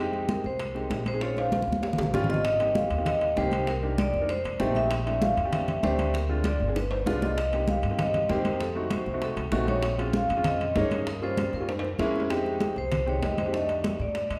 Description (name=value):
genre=Afro-Cuban jazz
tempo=195 BPM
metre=4/4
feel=straight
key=F minor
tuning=A4 = 440 Hz
part: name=warm upright piano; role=accompaniment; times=0.0-14.0 s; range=G3 to Bb4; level=-33 LUFS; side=equal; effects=none
part: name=upright bass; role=bass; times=0.0-14.4 s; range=G1 to A2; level=-34 LUFS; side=equal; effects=none
part: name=bongos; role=percussion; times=0.1-14.3 s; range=none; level=-41 LUFS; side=equal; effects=none
part: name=congas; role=percussion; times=0.1-14.4 s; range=none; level=-35 LUFS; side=equal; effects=none
part: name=vibraphone with medium hard mallets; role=melody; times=0.3-14.4 s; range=A4 to F5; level=-32 LUFS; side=equal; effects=none
part: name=timbales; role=percussion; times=0.3-14.4 s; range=none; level=-40 LUFS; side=equal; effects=none
room=wet recital hall reverb, RT60 1.9 s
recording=recorded in a church or concert hall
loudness=-27 LUFS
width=mono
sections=0.0-2.4 A section; 2.4-12.3 B section; 12.3-14.4 C section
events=drum fill 1.2-2.4, 6.5-7.4, 11.7-12.3; vibraphone solo 12.3-14.4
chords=0.0 Fm7; 1.2 Bbm7; 1.8 Eb13; 2.4 Abmaj9; 3.7 Cm7; 4.3 F7; 4.9 Bbmaj9#11; 6.1 Dm7b5; 6.8 G7b9; 7.4 Cm7; 8.6 F7b9; 9.8 Bbm9; 11.1 Gm7b5; 11.7 Gb9; 12.3 Fm7; 13.5 F13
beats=0.29 0.60 0.91 | 1.21 1.52 1.83 2.14 | 2.45 2.76 3.06 3.37 | 3.68 3.99 4.30 4.61 | 4.91 5.22 5.53 5.84 | 6.14 6.45 6.76 7.07 | 7.38 7.68 7.99 8.30 | 8.61 8.92 9.22 9.53 | 9.84 10.15 10.46 10.76 | 11.07 11.38 11.69 11.99 | 12.30 12.61 12.92 13.23 | 13.54 13.85 14.16